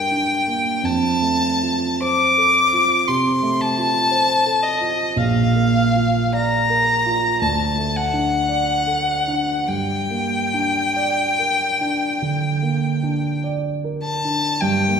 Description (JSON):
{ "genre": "classical, romantic duo for violin and grand piano", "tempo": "47-58 BPM", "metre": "4/4", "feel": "rubato", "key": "G minor", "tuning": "A4 = 440 Hz", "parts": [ { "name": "rich violin", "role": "melody", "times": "0.0-15.0 s", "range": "Eb5 to D6", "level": "-19 LUFS", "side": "left 2 dB", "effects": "none" }, { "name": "dark concert grand piano", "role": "accompaniment", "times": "0.0-15.0 s", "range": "Bb1 to D5", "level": "-21 LUFS", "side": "right 2 dB", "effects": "none" } ], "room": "wet recital hall reverb, RT60 1.7 s", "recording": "recorded in a church or concert hall", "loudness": "-17 LUFS", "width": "side -6 dB against mid", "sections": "0.0-14.6 A section", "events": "none", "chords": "0.0 Gm; 0.9 F; 5.2 Bb; 7.4 D; 9.7 Gm", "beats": "| 0.85 2.02 3.08 4.12 | 5.17 6.34 7.42 8.50 | 9.70 10.98 12.23 13.44 | 14.61" }